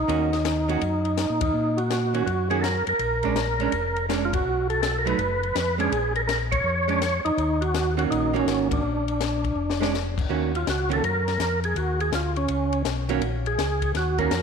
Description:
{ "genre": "soul jazz organ trio", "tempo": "164 BPM", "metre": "4/4", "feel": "swing 65% on 8ths", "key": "Eb minor", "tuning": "A4 = 440 Hz", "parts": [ { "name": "overdriven tonewheel organ", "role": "melody", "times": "0.0-14.4 s", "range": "Db4 to C#5", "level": "-25 LUFS", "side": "right 1 dB", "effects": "slow rotary speaker, chorus vibrato, tape echo" }, { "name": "mellow tonewheel organ", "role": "bass", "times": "0.0-14.4 s", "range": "F1 to Bb2", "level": "-28 LUFS", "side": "left 2 dB", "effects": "slow rotary speaker" }, { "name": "archtop guitar, miked and amplified", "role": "accompaniment", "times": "0.1-14.3 s", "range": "Eb3 to Gb4", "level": "-28 LUFS", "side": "right 9 dB", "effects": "none" }, { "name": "compact cocktail drum kit", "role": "drums", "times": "0.1-14.4 s", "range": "crash cymbal, hi-hat, kick drum, ride cymbal, snare drum", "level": "-31 LUFS", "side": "left 8 dB", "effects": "none" } ], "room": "moderate echo chamber reverb, RT60 1.5 s, small room ambience", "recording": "1960s-style stereo with parts hard left and right", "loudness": "-22 LUFS", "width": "side -6 dB against mid", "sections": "0.0-10.3 A section; 10.3-14.4 B section", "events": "band accent 1.4, 4.3, 6.5, 8.7; drum fill 9.6-9.9; tonewheel organ solo 10.3-14.4", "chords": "0.1 Ebm7; 3.0 Bb7#9; 4.5 B7(no3); 5.9 Bbm7; 7.4 Ebm7; 8.8 Bb; 10.3 Ebm7", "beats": "| 0.08 0.45 0.81 1.18 | 1.54 1.90 2.27 2.63 | 3.00 3.36 3.73 4.09 | 4.46 4.82 5.19 5.55 | 5.92 6.28 6.64 7.01 | 7.38 7.74 8.11 8.47 | 8.84 9.20 9.56 9.93 | 10.30 10.66 11.03 11.39 | 11.76 12.12 12.49 12.85 | 13.22 13.58 13.95 14.31" }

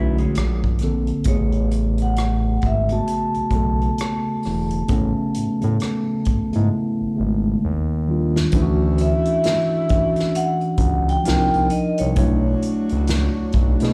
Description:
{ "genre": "R&B, neo-soul", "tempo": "66 BPM", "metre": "4/4", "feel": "swing 60% on 16ths", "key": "A major", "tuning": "A4 = 440 Hz", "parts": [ { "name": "electric guitar through a small old amp", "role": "second line", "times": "0.0-0.6 s", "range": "G#3 to E4", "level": "-34 LUFS", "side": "equal", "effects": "subtle chorus, slapback echo" }, { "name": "mellow tine electric piano", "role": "accompaniment", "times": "0.0-13.9 s", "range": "C#3 to C#5", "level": "-24 LUFS", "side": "equal", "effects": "slapback echo" }, { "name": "smooth synth bass", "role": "bass", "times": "0.0-13.9 s", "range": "E1 to B2", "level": "-23 LUFS", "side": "equal", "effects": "none" }, { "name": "unplugged drum kit", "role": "drums", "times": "0.2-13.9 s", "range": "hi-hat, kick drum, rim click, snare drum", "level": "-26 LUFS", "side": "equal", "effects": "none" }, { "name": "vibraphone with medium mallets", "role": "melody", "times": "1.3-13.9 s", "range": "C#5 to A5", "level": "-28 LUFS", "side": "equal", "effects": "slapback echo" }, { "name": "clear saxophone section", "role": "stabs", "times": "8.5-13.9 s", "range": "F#3 to F#4", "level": "-36 LUFS", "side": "equal", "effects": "slapback echo" } ], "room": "small room ambience", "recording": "live gig heard through the venue's PA, club reverb", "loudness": "-20 LUFS", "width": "mono", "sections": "0.0-8.5 A section; 8.5-13.9 B section", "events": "drum fill 6.7-8.5", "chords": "0.3 Bbmaj9; 1.3 Amaj9; 7.6 D#maj9; 8.5 Dmaj9; 11.3 Cm11; 12.2 Bm11", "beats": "0.35 | 1.26 2.17 3.07 3.98 | 4.89 5.80 6.71 7.62 | 8.53 9.44 10.35 11.26 | 12.16 13.07" }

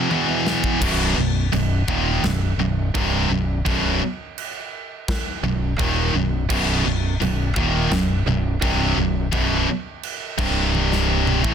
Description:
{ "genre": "heavy metal", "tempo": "85 BPM", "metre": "4/4", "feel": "straight", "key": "unclear", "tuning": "A4 = 440 Hz", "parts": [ { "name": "scooped high-gain guitar", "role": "riff", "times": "0.0-11.5 s", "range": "B1 to A3", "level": "-23 LUFS", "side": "left 10 dB", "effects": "distortion" }, { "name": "tight distorted guitar", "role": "riff", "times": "0.0-11.5 s", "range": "B1 to A3", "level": "-23 LUFS", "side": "right 10 dB", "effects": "distortion" }, { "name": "tight metal drum kit", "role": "drums", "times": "0.1-11.5 s", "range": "china cymbal, crash cymbal, kick drum, snare drum, toms", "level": "-27 LUFS", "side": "equal", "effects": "none" }, { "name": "growling fingered electric bass", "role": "bass", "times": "0.8-11.5 s", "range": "B0 to A1", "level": "-24 LUFS", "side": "left 1 dB", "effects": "overdrive" } ], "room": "light reverb", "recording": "dense, heavily limited modern master", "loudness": "-18 LUFS", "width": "side -8 dB against mid", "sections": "0.8-11.5 A section", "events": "break 0.0-0.8; drum fill 0.1-0.8, 10.7-11.5", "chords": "0.1 E5; 0.8 B; 10.4 C5", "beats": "0.10 | 0.82 1.53 2.24 2.95 | 3.66 4.37 5.08 5.79 | 6.50 7.21 7.91 8.62 | 9.32 10.03 10.73 11.44" }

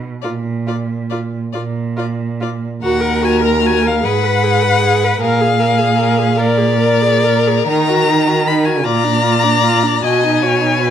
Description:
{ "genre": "classical, slow romantic movement for string quartet", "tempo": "44-54 BPM (dotted quarters)", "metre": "6/8", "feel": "rubato", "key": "unclear", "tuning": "A4 = 440 Hz", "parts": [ { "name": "rich cello", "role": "bass", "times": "0.0-10.9 s", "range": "Eb2 to Eb3", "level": "-17 LUFS", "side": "right 4 dB", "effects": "none" }, { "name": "rich violin", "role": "melody", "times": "0.2-10.9 s", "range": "Ab4 to D#5", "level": "-19 LUFS", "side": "left 11 dB", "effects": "none" }, { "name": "rich violin", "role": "second line", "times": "0.2-10.9 s", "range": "Bb4 to Cb6", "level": "-17 LUFS", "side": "left 3 dB", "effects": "none" }, { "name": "rich viola", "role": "accompaniment", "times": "0.2-10.9 s", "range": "D4 to Cb5", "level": "-19 LUFS", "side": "right 2 dB", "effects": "none" } ], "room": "light reverb", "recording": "close, detailed microphones", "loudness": "-12 LUFS", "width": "side -9 dB against mid", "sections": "0.0-2.8 A section; 2.8-10.9 B section", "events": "none", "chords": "0.2 Bb5; 2.8 Ebm; 4.0 Abm; 5.2 Bb7; 7.7 Ebm; 8.8 Bb; 10.0 B", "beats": "| 0.24 1.54 | 2.82 4.03 | 5.20 6.38 | 7.67 8.84 | 10.03" }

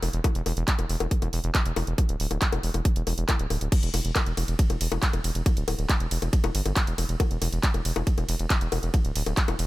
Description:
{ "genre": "psychedelic trance", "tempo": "138 BPM", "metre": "4/4", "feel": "straight", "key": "E minor", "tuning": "A4 = 440 Hz", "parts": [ { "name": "round analog bass", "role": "bass", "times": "0.0-9.7 s", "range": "D1 to G1", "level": "-27 LUFS", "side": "equal", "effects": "none" }, { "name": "drum and bass drum kit", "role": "drums", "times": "0.0-9.7 s", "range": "bongos, crash cymbal, handclaps, hi-hat, ride cymbal", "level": "-29 LUFS", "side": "left 2 dB", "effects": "none" }, { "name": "electronic kick drum", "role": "drums", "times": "0.2-9.5 s", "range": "none", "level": "-23 LUFS", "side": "equal", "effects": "none" } ], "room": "little or no reverb", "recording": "none", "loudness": "-23 LUFS", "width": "side -17 dB against mid", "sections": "0.0-9.7 A section", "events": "none", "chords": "none", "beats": "| 0.24 0.68 1.11 1.55 | 1.98 2.42 2.85 3.29 | 3.72 4.16 4.59 5.03 | 5.46 5.89 6.33 6.76 | 7.20 7.63 8.07 8.50 | 8.94 9.37" }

